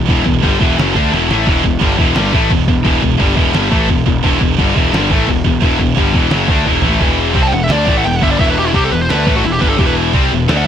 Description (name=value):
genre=heavy metal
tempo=173 BPM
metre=4/4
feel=straight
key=E minor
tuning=A4 = 440 Hz
part: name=distorted electric guitar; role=riff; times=0.0-10.7 s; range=E2 to D4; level=-17 LUFS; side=left 12 dB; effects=overdrive
part: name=heavy high-gain guitar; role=riff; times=0.0-10.7 s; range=E2 to D4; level=-17 LUFS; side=right 15 dB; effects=distortion
part: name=fuzz picked electric bass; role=bass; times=0.0-10.6 s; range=E1 to D2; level=-18 LUFS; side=equal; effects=overdrive
part: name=lo-fi sampler-style drum kit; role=drums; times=0.1-10.6 s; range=crash cymbal, kick drum, snare drum, toms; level=-16 LUFS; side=equal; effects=none
part: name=bluesy overdriven lead guitar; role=melody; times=7.4-10.7 s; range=E4 to A5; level=-18 LUFS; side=equal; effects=distortion, tape echo
room=digital ambience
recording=none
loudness=-11 LUFS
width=side -9 dB against mid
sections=0.0-7.0 A section; 7.0-10.7 B section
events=drum fill 1.1-1.5, 6.7-7.0; lead electric guitar solo 7.0-10.7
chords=0.0 Em